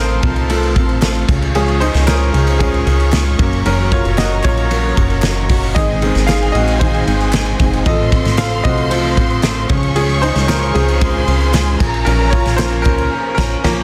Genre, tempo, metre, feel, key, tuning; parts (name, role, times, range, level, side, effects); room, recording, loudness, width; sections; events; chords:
piano-driven pop; 114 BPM; 4/4; straight; A4 = 439 Hz
bright upright piano; accompaniment; 0.0-13.8 s; Eb3 to F5; -22 LUFS; equal
warm symphonic string section; sustained chords; 0.0-13.8 s; Ab4 to Db6; -30 LUFS; equal
fingerpicked steel-string acoustic guitar; riff; 0.0-13.8 s; Ab2 to Bb4; -25 LUFS; equal
plucky analog bass; bass; 0.0-13.8 s; Gb1 to Db2; -20 LUFS; equal
loose indie drum kit; drums; 0.2-13.8 s; crash cymbal, hi-hat, kick drum, ride cymbal, snare drum; -20 LUFS; equal
group handclap; percussion; 1.0-13.0 s; -33 LUFS; equal
warm studio violin section; second line; 5.8-13.8 s; Ab4 to Db6; -26 LUFS; equal
light reverb, small room ambience; dense, heavily limited modern master; -15 LUFS; mono
0.0-13.8 A section
upright piano solo 0.0-13.8; band accent 13.1-13.8
0.0 F/A; 1.3 Db; 3.4 Gb; 5.8 Ab; 7.9 F/A; 9.7 Db; 11.8 Bbm